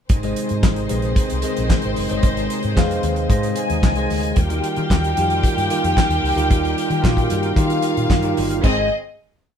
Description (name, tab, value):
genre	disco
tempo	112 BPM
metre	4/4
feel	straight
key	Ab major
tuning	A4 = 440 Hz
part	warm studio string section	second line	0.1-8.9 s	C4 to Ab5	-24 LUFS	left 2 dB	none
part	overdriven tonewheel organ	sustained chords	0.1-8.9 s	C3 to Ab4	-28 LUFS	right 4 dB	chorus vibrato, slow rotary speaker
part	vintage muted fingered electric bass	bass	0.1-8.9 s	Gb1 to Eb3	-24 LUFS	equal	none
part	damped 70s drum kit	drums	0.1-8.8 s	crash cymbal, handclaps, hi-hat, kick drum, snare drum	-19 LUFS	equal	none
part	bell-like tine electric piano	accompaniment	0.2-8.9 s	Eb3 to F5	-23 LUFS	left 1 dB	medium stereo tremolo
room	moderate studio ambience, RT60 0.5 s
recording	band playing live in one room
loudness	-16 LUFS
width	side -8 dB against mid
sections	0.1-8.6 verse; 8.6-9.6 final chord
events	none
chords	0.1 Ab; 4.4 Ebadd9; 8.6 Ab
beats	| 0.10 0.63 1.17 1.70 | 2.23 2.77 3.30 3.83 | 4.37 4.90 5.43 5.97 | 6.50 7.03 7.57 8.10 | 8.64